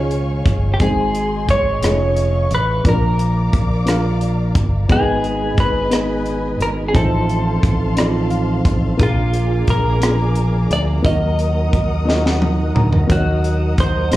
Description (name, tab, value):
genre	slow gospel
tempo	58 BPM (dotted quarters)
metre	6/8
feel	straight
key	Eb minor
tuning	A4 = 440 Hz
part	clean electric guitar	melody	0.0-14.2 s	F4 to Eb5	-21 LUFS	equal	analog chorus, slapback echo
part	dark grand piano	accompaniment	0.0-14.2 s	Ab2 to C6	-23 LUFS	left 1 dB	none
part	warm studio string section	sustained chords	0.0-14.2 s	Ab4 to Eb6	-30 LUFS	left 1 dB	none
part	modern bright fingered electric bass	bass	0.0-14.2 s	F1 to Eb2	-18 LUFS	equal	none
part	tight funk drum kit	drums	0.1-14.2 s	hi-hat, kick drum, rim click, snare drum, toms	-18 LUFS	equal	none
part	percussive tonewheel organ	sustained chords	4.9-14.2 s	F3 to Bb5	-25 LUFS	right 3 dB	fast rotary speaker, chorus vibrato
room	studio reverb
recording	live gig heard through the venue's PA, club reverb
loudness	-14 LUFS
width	side -15 dB against mid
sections	0.0-13.1 A section; 13.1-14.2 A section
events	grand piano fill 8.0-9.0, 12.1-13.1; drum fill 12.1-13.1; tonewheel organ fill 12.1-13.1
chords	0.0 Db; 0.8 Ab; 1.8 F7alt; 2.8 Bb; 4.9 Abm; 6.9 F7/A; 9.0 Bb7; 11.0 Ebm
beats	| 0.80 1.82 | 2.85 3.87 | 4.89 5.92 | 6.95 7.97 | 9.00 10.02 | 11.05 12.07 | 13.10 14.13